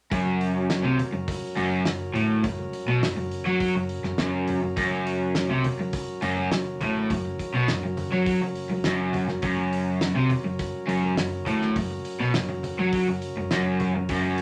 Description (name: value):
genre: psychedelic rock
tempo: 103 BPM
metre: 4/4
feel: straight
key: F# major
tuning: A4 = 437 Hz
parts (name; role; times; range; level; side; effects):
- combo organ; sustained chords; 0.1-14.4 s; F#3 to A#4; -37 LUFS; equal; none
- crunchy overdriven guitar; riff; 0.1-14.4 s; F#2 to F#3; -27 LUFS; equal; none
- fingered electric bass; bass; 0.1-14.4 s; F#1 to F#2; -40 LUFS; equal; none
- cloth-damped thuddy drum kit; drums; 0.1-14.4 s; hi-hat, kick drum, snare drum; -34 LUFS; equal; none
- congas; percussion; 0.3-14.4 s; none; -42 LUFS; equal; none
room: moderate studio reverb, RT60 0.5 s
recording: none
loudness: -26 LUFS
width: mono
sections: 0.1-14.4 A section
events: none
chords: 0.1 F#